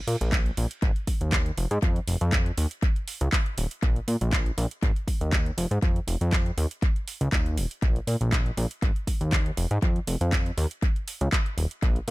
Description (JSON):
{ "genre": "filtered disco house", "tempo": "120 BPM", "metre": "4/4", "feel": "swing 54% on 16ths", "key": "unclear", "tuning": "A4 = 439 Hz", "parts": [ { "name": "fat analog bass", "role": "bass", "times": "0.1-12.1 s", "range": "Eb1 to Bb2", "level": "-26 LUFS", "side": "equal", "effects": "sidechain pumping" }, { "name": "house drum kit", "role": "drums", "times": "0.1-12.1 s", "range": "handclaps, hi-hat", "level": "-32 LUFS", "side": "right 1 dB", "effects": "sidechain pumping on hats, sidechain pumping on cymbals, tape echo" }, { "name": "electronic kick drum", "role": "drums", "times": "0.3-11.9 s", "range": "none", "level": "-24 LUFS", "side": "equal", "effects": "none" } ], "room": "little or no reverb", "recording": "echo-heavy mix", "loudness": "-23 LUFS", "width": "side -19 dB against mid", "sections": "0.0-12.1 A section", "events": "none", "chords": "none", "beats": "0.33 0.82 1.32 | 1.82 2.33 2.83 3.33 | 3.83 4.33 4.83 5.33 | 5.83 6.33 6.83 7.33 | 7.83 8.32 8.82 9.32 | 9.82 10.32 10.82 11.32 | 11.82" }